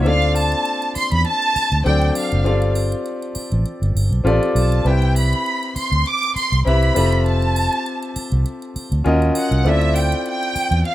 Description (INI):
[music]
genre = lush 1970s-style soul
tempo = 100 BPM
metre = 4/4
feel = swing 54% on 16ths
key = unclear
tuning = A4 = 440 Hz
[part]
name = warm studio violin section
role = melody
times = 0.0-10.9 s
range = E5 to D6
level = -21 LUFS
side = right 1 dB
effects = none
[part]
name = warm concert grand piano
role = accompaniment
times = 0.0-10.9 s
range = F#3 to E5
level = -22 LUFS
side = left 2 dB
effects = none
[part]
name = vintage muted fingered electric bass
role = bass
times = 0.0-10.8 s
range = F1 to E2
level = -17 LUFS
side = equal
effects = none
[part]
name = triangle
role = percussion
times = 0.1-10.9 s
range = none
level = -34 LUFS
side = right 3 dB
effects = none
[sound]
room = studio reverb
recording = rough home demo mix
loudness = -16 LUFS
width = side -14 dB against mid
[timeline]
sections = 0.0-10.9 A section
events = none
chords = 0.1 Dm7; 1.9 D7; 2.5 G9sus4; 4.9 Cmaj7; 7.0 Fmaj9; 9.1 Ebm9; 9.7 Dm9